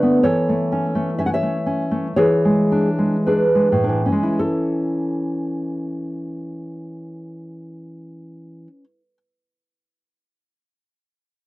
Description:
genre	classical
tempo	50-66 BPM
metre	4/4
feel	rubato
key	A major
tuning	A4 = 440 Hz
part	nylon-string guitar	accompaniment	0.0-9.2 s	A2 to F#5	-18 LUFS	equal	none
room	light reverb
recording	dry, close 1970s-style studio recording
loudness	-17 LUFS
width	side -18 dB against mid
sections	0.0-4.4 A section; 4.4-8.8 B section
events	slowing down 0.0-4.4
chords	0.3 A/E; 2.2 E7; 4.4 A

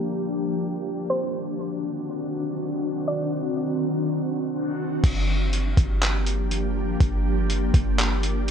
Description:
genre	hip hop, atmospheric cloud-rap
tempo	122 BPM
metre	4/4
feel	half-time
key	G minor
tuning	A4 = 439 Hz
part	ethereal airy pad	sustained chords	0.0-8.5 s	Eb3 to G4	-26 LUFS	left 1 dB	ensemble chorus, built-in reverb, sidechain pumping
part	soft round pluck	melody	1.1-3.5 s	C5 to D5	-30 LUFS	right 1 dB	chorus, low-pass filter, digital delay
part	clean 808-style bass	bass	5.0-8.5 s	G1	-24 LUFS	equal	none
part	lo-fi sampler-style drum kit	drums	5.0-8.5 s	crash cymbal, handclaps, hi-hat, kick drum	-24 LUFS	equal	overdrive, vintage 12-bit sampler grit
room	light reverb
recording	low-pass filter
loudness	-22 LUFS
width	side -8 dB against mid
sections	0.0-5.0 A section; 5.0-8.5 B section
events	filter sweep 0.0-5.0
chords	0.0 Gm7; 1.1 D7b9; 5.0 Gm7

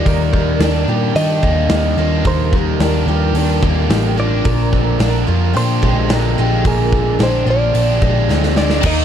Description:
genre	rock, shoegaze and dream pop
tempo	109 BPM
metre	4/4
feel	straight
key	unclear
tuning	A4 = 440 Hz
part	direct-recorded clean electric guitar	melody	0.0-9.0 s	G4 to Eb5	-22 LUFS	equal	phaser, tape echo
part	picked twelve-string acoustic guitar	arpeggios	0.0-9.0 s	F4 to Bb4	-26 LUFS	right 6 dB	ensemble chorus, tape echo
part	biting overdriven guitar	riff	0.0-9.0 s	Bb2 to G4	-22 LUFS	right 14 dB	reverse reverb
part	crunchy overdriven guitar	riff	0.0-9.0 s	Bb2 to Eb4	-21 LUFS	left 12 dB	analog chorus
part	vintage muted picked electric bass	bass	0.1-9.0 s	A1 to Eb3	-17 LUFS	equal	none
part	big rock drum kit	drums	0.1-9.0 s	crash cymbal, hi-hat, kick drum, snare drum	-20 LUFS	equal	none
part	biting overdriven guitar	riff	8.8-9.0 s	Eb3 to Bb3	-20 LUFS	equal	phaser
room	small room ambience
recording	dark, warm production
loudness	-13 LUFS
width	side -9 dB against mid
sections	0.0-8.8 A section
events	drum fill 8.3-8.8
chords	0.1 Ebmaj7; 4.5 Bb7

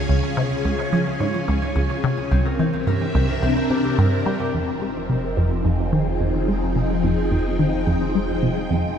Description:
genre	ambient, sequencer-driven space music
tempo	108 BPM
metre	4/4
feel	straight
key	F minor from 4.5 s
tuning	A4 = 440 Hz
part	phased string machine	sustained chords	0.0-9.0 s	C3 to Ab5	-23 LUFS	left 1 dB	ensemble chorus, phaser
part	concert harp	arpeggios	0.0-6.8 s	C4 to Db5	-30 LUFS	left 3 dB	auto-pan, tape echo
part	resonant blip pluck	riff	0.0-9.0 s	C2 to Ab3	-21 LUFS	right 1 dB	chorus, phaser, tape echo
part	round analog bass	bass	4.5-9.0 s	F1	-28 LUFS	equal	none
room	moderate huge ambient reverb, RT60 8.0 s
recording	none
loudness	-19 LUFS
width	side -8 dB against mid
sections	0.0-4.5 A section; 4.5-9.0 B section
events	none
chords	0.0 Db; 2.3 C7; 4.5 Fm7

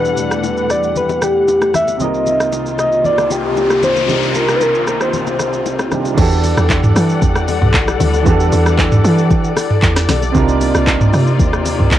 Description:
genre	amapiano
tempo	115 BPM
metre	4/4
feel	straight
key	unclear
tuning	A4 = 442 Hz
part	soft struck synth lead	melody	0.0-5.9 s	G4 to E5	-16 LUFS	equal	chorus, analog delay
part	warm baby grand piano	accompaniment	0.0-12.0 s	C3 to F#5	-21 LUFS	right 7 dB	cassette tape
part	dark studio string section	sustained chords	0.0-12.0 s	C2 to F#5	-20 LUFS	left 8 dB	sidechain pumping, cassette tape
part	afro-pop drum kit	drums	0.1-12.0 s	crash cymbal, handclaps, hi-hat, kick drum, rim click, shaker, snare drum, toms	-16 LUFS	right 1 dB	none
part	bongos and congas	percussion	0.2-12.0 s	none	-24 LUFS	left 7 dB	none
part	noise sweep	sound effects	2.6-6.2 s	none	-24 LUFS	left 1 dB	none
part	deep log drum bass	bass	6.2-12.0 s	B1 to E3	-15 LUFS	right 1 dB	none
room	little or no reverb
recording	home recording on cassette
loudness	-12 LUFS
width	side -12 dB against mid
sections	0.0-6.2 A section; 6.2-12.0 B section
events	noise sweep 2.6-6.2; drop 6.2-12.0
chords	0.0 Em11; 2.0 Cm11; 6.2 Em11; 10.3 Cm11

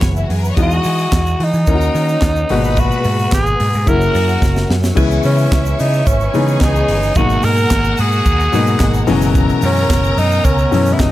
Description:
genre	disco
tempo	109 BPM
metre	4/4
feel	straight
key	unclear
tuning	A4 = 439 Hz
part	clear studio string section	second line	0.0-11.1 s	E4 to D#6	-24 LUFS	left 2 dB	none
part	warm concert grand piano	accompaniment	0.0-11.1 s	A#2 to F#4	-19 LUFS	left 4 dB	none
part	percussive tonewheel organ	sustained chords	0.0-11.1 s	E3 to E6	-26 LUFS	right 2 dB	chorus vibrato, slow rotary speaker
part	picked electric bass	bass	0.0-11.1 s	F#1 to E3	-16 LUFS	equal	none
part	tight funk drum kit	drums	0.0-11.1 s	crash cymbal, handclaps, hi-hat, kick drum, snare drum	-19 LUFS	equal	none
part	tube shaker	percussion	0.0-11.1 s	none	-36 LUFS	right 8 dB	none
part	raspy tenor saxophone	melody	0.6-11.1 s	C#4 to A#4	-18 LUFS	right 1 dB	none
room	studio ambience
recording	none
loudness	-12 LUFS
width	side -14 dB against mid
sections	0.0-5.0 A section; 5.0-11.1 B section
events	drum fill 4.4-5.0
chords	0.0 F#9sus4; 0.6 Emaj9; 1.7 D#m7; 2.5 G#m9; 3.9 F#7; 5.0 C#m9; 7.2 G#m9; 9.1 F#9sus4

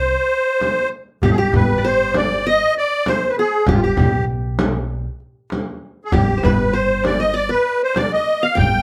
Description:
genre	Arabic maqam ensemble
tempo	98 BPM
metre	4/4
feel	straight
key	G maqam hijaz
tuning	A4 = 440 Hz
part	musette accordion	melody	0.0-8.8 s	F4 to G5	-20 LUFS	equal	none
part	qanun	second line	0.0-8.8 s	G4 to G5	-26 LUFS	equal	none
part	upright bass	bass	0.0-8.8 s	G1 to C2	-26 LUFS	equal	none
part	darbuka	percussion	0.0-8.7 s	none	-25 LUFS	equal	none
part	frame drum	percussion	0.6-8.7 s	none	-23 LUFS	equal	none
room	moderate studio reverb, RT60 0.5 s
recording	band playing live in one room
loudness	-18 LUFS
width	mono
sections	0.0-1.2 A section; 1.2-8.8 B section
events	none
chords	none

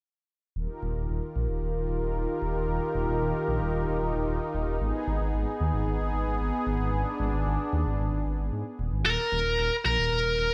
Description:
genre	synthwave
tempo	113 BPM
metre	4/4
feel	straight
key	Eb major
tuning	A4 = 440 Hz
part	brassy analog pad	sustained chords	0.6-9.0 s	Eb3 to Bb4	-32 LUFS	equal	chorus
part	dark detuned saw bass	bass	0.6-10.5 s	Eb1 to Ab2	-32 LUFS	equal	none
part	biting lead guitar	melody	9.1-10.5 s	Bb4	-26 LUFS	equal	overdrive, delay
room	moderate plate reverb, RT60 3.3 s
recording	bright 1980s-style digital production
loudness	-28 LUFS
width	mono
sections	0.6-9.1 A section; 9.1-10.5 B section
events	filter sweep on analog synth pad 0.6-9.1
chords	0.6 Ebadd9; 4.8 Abm; 9.1 Eb5

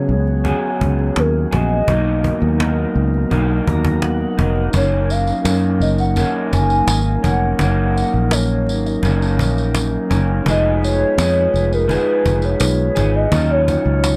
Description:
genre	indie pop, bedroom pop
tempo	84 BPM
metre	4/4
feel	straight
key	F# major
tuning	A4 = 440 Hz
part	hollow clarinet-like synth lead	melody	0.0-14.2 s	A#4 to G#5	-24 LUFS	equal	lush chorus, analog delay
part	electric guitar through a small old amp	accompaniment	0.0-14.2 s	F#2 to G#4	-25 LUFS	equal	lush chorus, warbly pitch drift
part	mellow tonewheel organ	accompaniment	0.0-14.2 s	F#3 to A#5	-26 LUFS	equal	slow rotary speaker
part	fingered electric bass	bass	0.0-14.2 s	E#1 to C#3	-20 LUFS	equal	none
part	cajon	drums	0.1-14.2 s	none	-25 LUFS	equal	none
part	tambourine	percussion	4.7-14.2 s	none	-34 LUFS	equal	none
room	light reverb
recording	none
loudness	-17 LUFS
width	mono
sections	0.0-14.2 A section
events	tonewheel organ fill 3.3-4.7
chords	0.0 C#7sus4; 1.9 Bmaj7; 4.7 F#6; 10.5 Fm7b5; 13.3 D#m9

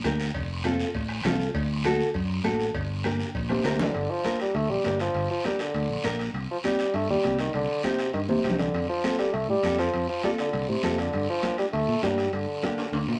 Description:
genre	latin, cumbia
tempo	200 BPM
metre	4/4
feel	straight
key	G minor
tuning	A4 = 440 Hz
part	nylon-string guitar	accompaniment	0.0-12.8 s	Bb3 to Bb4	-33 LUFS	equal	none
part	fingered electric bass	bass	0.0-13.1 s	F1 to Bb2	-32 LUFS	equal	none
part	bombo	percussion	0.0-3.8 s	none	-40 LUFS	equal	none
part	congas	percussion	0.0-13.1 s	none	-36 LUFS	equal	none
part	guiro	percussion	0.0-13.2 s	none	-39 LUFS	equal	none
part	cowbell and timbales	percussion	0.3-13.2 s	none	-41 LUFS	equal	none
part	mellow bassoon	melody	3.5-13.1 s	C3 to A3	-29 LUFS	equal	none
room	wet studio reverb, RT60 0.7 s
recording	none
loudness	-27 LUFS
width	mono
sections	0.0-3.9 A section; 3.9-13.2 B section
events	drum fill 3.5-3.9, 8.3-8.7, 12.8-13.2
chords	0.3 F; 1.5 D; 2.7 Gm; 6.3 Cm; 8.7 F; 11.1 Gm

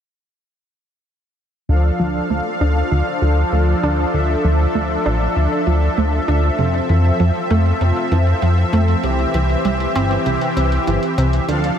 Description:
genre	synthwave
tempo	98 BPM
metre	4/4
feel	straight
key	D minor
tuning	A4 = 443 Hz
part	soft supersaw	sustained chords	1.7-11.8 s	E3 to F5	-19 LUFS	equal	analog chorus, shimmer reverb
part	analog pluck	arpeggios	1.7-11.6 s	C3 to D4	-23 LUFS	right 3 dB	chorus, ping-pong delay, shimmer reverb
part	chorused synth bass	bass	1.7-11.7 s	G1 to F2	-17 LUFS	equal	tube saturation
part	electronic hi-hat	drums	1.7-11.8 s	none	-40 LUFS	left 2 dB	none
room	moderate lush hall reverb, RT60 1.8 s, digital ambience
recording	bright 1980s-style digital production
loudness	-15 LUFS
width	side -8 dB against mid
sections	1.7-11.8 A section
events	filter sweep on analog synth bass 1.7-11.8; filter sweep on synth arpeggio sound 1.7-11.8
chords	1.7 Dm; 6.6 Fmaj7; 9.0 C

